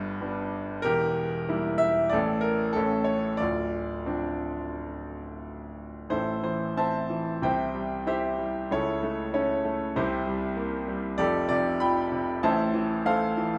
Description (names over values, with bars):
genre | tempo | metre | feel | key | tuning
classical, lyrical solo piano | 84-99 BPM | 4/4 | rubato | D minor, A minor from 6.1 s | A4 = 440 Hz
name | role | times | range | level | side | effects
clear grand piano | solo | 0.0-13.6 s | D1 to B5 | -28 LUFS | equal | none
room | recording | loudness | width
wet recital hall reverb, RT60 1.4 s | none | -28 LUFS | mono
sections
0.0-6.1 A section; 6.1-13.6 B section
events
none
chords
0.0 G; 0.8 Edim; 2.1 N.C.; 2.8 A; 3.4 Dm7; 6.1 Am; 7.4 C; 8.7 A/C#; 10.0 C7; 11.2 Fadd9; 12.4 Am